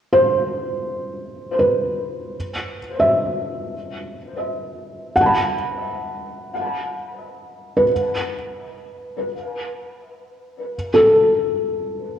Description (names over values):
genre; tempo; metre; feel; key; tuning
ambient; free time; none; none; unclear; A4 = 440 Hz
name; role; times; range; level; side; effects
felt-muted upright piano; solo; 0.1-12.2 s; A4 to B5; -19 LUFS; equal; diffuse ambient delay
room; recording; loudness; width
wet scoring stage reverb, RT60 2.0 s; worn, warbling old tape, cassette tape, warbly pitch drift; -18 LUFS; side -9 dB against mid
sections
0.0-10.7 A section; 10.7-12.2 B section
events
none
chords
0.0 N.C.; 5.1 F#madd11; 7.9 N.C.